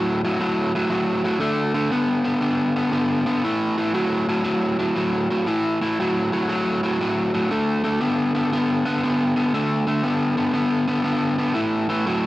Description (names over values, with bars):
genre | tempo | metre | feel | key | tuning
blues | 118 BPM | 4/4 | swing 67% on 8ths | unclear | A4 = 440 Hz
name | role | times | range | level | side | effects
overdriven electric guitar | solo | 0.0-12.3 s | A2 to B3 | -19 LUFS | equal | tape echo
room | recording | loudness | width
moderate studio reverb, RT60 0.5 s | none | -19 LUFS | side -16 dB against mid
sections
0.0-12.3 A section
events
none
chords
0.0 A5; 1.4 D5; 3.5 A5; 7.5 D5; 11.6 A5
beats
0.41 0.92 | 1.43 1.93 2.44 2.95 | 3.45 3.96 4.46 4.97 | 5.48 5.99 6.49 7.00 | 7.51 8.01 8.52 9.03 | 9.53 10.04 10.55 11.05 | 11.56 12.07